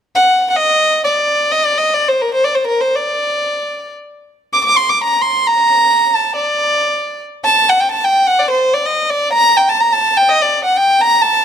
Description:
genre	klezmer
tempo	free time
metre	none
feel	none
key	D phrygian dominant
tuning	A4 = 441 Hz
part	warm violin	solo	0.1-11.4 s	Bb4 to D6	-11 LUFS	equal	none
room	moderate recital hall reverb, RT60 1.7 s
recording	close, detailed microphones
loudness	-11 LUFS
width	side -8 dB against mid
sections	0.0-7.5 A section; 7.5-11.4 B section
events	none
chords	none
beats	free time

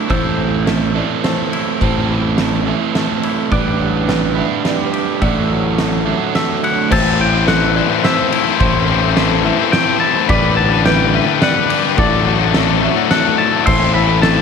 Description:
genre	post-rock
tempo	106 BPM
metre	3/4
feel	straight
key	A dorian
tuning	A4 = 441 Hz
part	pedal steel guitar	sustained chords	0.0-14.4 s	G4 to E6	-28 LUFS	equal	none
part	twangy electric guitar	arpeggios	0.0-14.4 s	A2 to G4	-23 LUFS	left 5 dB	tape echo
part	overdriven electric guitar	riff	0.0-6.9 s	A2 to B4	-20 LUFS	right 12 dB	none
part	felt-muted upright piano	arpeggios	0.1-14.4 s	A4 to E5	-27 LUFS	right 3 dB	tape echo
part	fuzz fingered electric bass	bass	0.1-14.4 s	A1	-19 LUFS	equal	overdrive
part	oversized low-tuned drum kit	drums	0.1-14.4 s	crash cymbal, kick drum, ride cymbal, snare drum	-19 LUFS	equal	none
part	twangy electric guitar	melody	6.4-14.4 s	C5 to C6	-19 LUFS	left 2 dB	tape echo
part	distorted electric guitar	riff	6.9-14.4 s	A2 to C5	-16 LUFS	left 15 dB	overdrive
room	light reverb, small room reverb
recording	none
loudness	-13 LUFS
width	side -6 dB against mid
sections	0.0-6.9 A section; 6.9-14.4 B section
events	none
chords	0.1 Am; 3.5 G/A; 5.2 Dadd9/A; 6.9 Am; 10.3 G/A; 12.0 Dadd9/A; 13.7 Am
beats	| 0.10 0.67 1.24 | 1.81 2.38 2.95 | 3.52 4.08 4.65 | 5.22 5.78 6.35 | 6.91 7.48 8.04 | 8.60 9.17 9.73 | 10.29 10.85 11.41 | 11.98 12.54 13.10 | 13.66 14.22

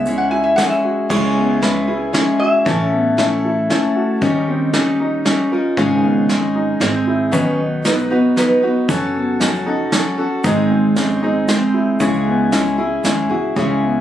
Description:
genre	acoustic folk duo or small band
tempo	116 BPM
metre	3/4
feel	straight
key	C# minor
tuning	A4 = 441 Hz
part	lap resonator guitar	second line	0.0-3.4 s	B4 to G#5	-20 LUFS	equal	none
part	picked steel-string acoustic guitar	accompaniment	0.0-14.0 s	G#2 to B4	-17 LUFS	left 1 dB	none
part	warm upright piano	arpeggios	0.0-14.0 s	B3 to F#4	-21 LUFS	right 2 dB	none
part	upright bass	bass	0.0-14.0 s	F#1 to D#2	-27 LUFS	right 1 dB	none
part	soft brush drum kit	drums	0.1-13.7 s	crash cymbal, hi-hat, kick drum, snare drum	-21 LUFS	right 2 dB	none
part	tube shaker	percussion	0.1-0.8, 7.3-13.2 s	none	-36 LUFS	right 5 dB	none
room	light reverb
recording	recorded on a phone in the room, studio ambience, compression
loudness	-14 LUFS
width	side -11 dB against mid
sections	0.0-1.1 A section; 1.1-13.6 B section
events	resonator guitar played with a steel bar solo 0.0-1.1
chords	0.0 C#m; 2.7 A; 4.2 D#7; 5.8 G#sus4; 6.8 G#; 7.3 B; 8.9 F#m; 10.4 G#; 12.0 C#m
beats	0.06 0.58 | 1.10 1.62 2.14 | 2.66 3.18 3.70 | 4.22 4.74 5.25 | 5.77 6.29 6.81 | 7.33 7.85 8.37 | 8.89 9.40 9.92 | 10.44 10.96 11.48 | 12.00 12.52 13.04 | 13.56

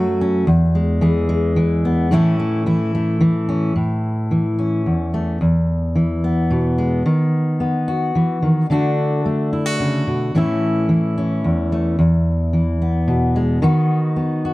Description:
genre	folk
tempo	110 BPM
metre	3/4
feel	straight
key	A major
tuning	A4 = 440 Hz
part	fingerpicked steel-string acoustic guitar	solo	0.0-14.5 s	E2 to G#4	-16 LUFS	equal	none
room	studio reverb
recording	dry, close 1970s-style studio recording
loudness	-16 LUFS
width	side -19 dB against mid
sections	0.0-3.8 A section; 3.8-14.5 B section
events	none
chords	0.5 E; 2.1 A; 5.4 E; 7.1 B/D#; 8.7 D; 10.3 A; 12.0 E; 13.6 B/D#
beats	| 0.48 1.03 1.57 | 2.12 2.67 3.22 | 3.76 4.31 4.86 | 5.41 5.96 6.50 | 7.05 7.60 8.15 | 8.70 9.25 9.79 | 10.34 10.89 11.44 | 11.98 12.53 13.08 | 13.63 14.17

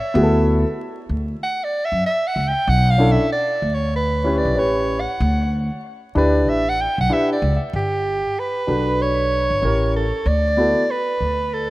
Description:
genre	hip hop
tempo	95 BPM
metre	4/4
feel	swing 60% on 16ths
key	D major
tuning	A4 = 443 Hz
part	breathy soprano saxophone	melody	0.0-11.7 s	G4 to G5	-21 LUFS	right 1 dB	tape echo
part	dark grand piano	accompaniment	0.1-10.8 s	B3 to B4	-21 LUFS	left 1 dB	none
part	upright bass	bass	0.1-11.7 s	G1 to F#2	-21 LUFS	equal	none
room	light reverb, small room reverb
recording	rough home demo mix, vinyl crackle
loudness	-17 LUFS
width	side -18 dB against mid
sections	0.0-7.7 A section; 7.7-11.7 B section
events	break 0.0; soprano saxophone solo 0.0-7.7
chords	0.2 D69; 2.7 Bm11; 4.6 A9; 5.2 Dsus2; 6.5 A7sus4; 7.7 Gmaj7; 9.6 A7b9; 10.3 D69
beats	| 0.15 0.79 1.42 2.05 | 2.68 3.31 3.94 4.57 | 5.21 5.84 6.47 7.10 | 7.73 8.36 9.00 9.63 | 10.26 10.89 11.52

